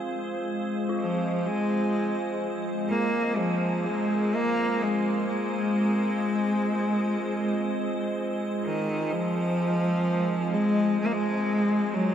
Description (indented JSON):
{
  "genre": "ambient",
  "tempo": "63 BPM",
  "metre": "4/4",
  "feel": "straight",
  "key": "F minor",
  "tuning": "A4 = 440 Hz",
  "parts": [
    { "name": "dark analog pad", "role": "sustained chords", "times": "0.0-12.1 s", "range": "F4 to F5", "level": "-34 LUFS", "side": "right 2 dB", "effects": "chorus" },
    { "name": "dark detuned synth bell", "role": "arpeggios", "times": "0.0-12.1 s", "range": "F4 to Bb4", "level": "-42 LUFS", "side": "left 1 dB", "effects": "none" },
    { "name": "organ-like drone", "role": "drone", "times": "0.0-12.1 s", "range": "Ab3", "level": "-31 LUFS", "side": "equal", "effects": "ensemble chorus, built-in reverb" },
    { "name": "icy glass pad", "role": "texture", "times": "0.0-12.1 s", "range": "C4 to C5", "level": "-38 LUFS", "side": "left 1 dB", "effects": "chorus, built-in reverb" },
    { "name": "bright cello", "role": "melody", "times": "1.0-12.1 s", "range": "Eb3 to Bb3", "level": "-26 LUFS", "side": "equal", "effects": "diffuse ambient delay" }
  ],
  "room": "wet huge ambient reverb, RT60 8.7 s",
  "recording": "none",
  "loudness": "-24 LUFS",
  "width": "side -9 dB against mid",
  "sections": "0.0-12.1 A section",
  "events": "fade-in on synth drone 0.0-12.1; fade-out on analog synth pad 0.0-12.1; fade-out on ambient pad 0.0-12.1",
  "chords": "0.0 Fm"
}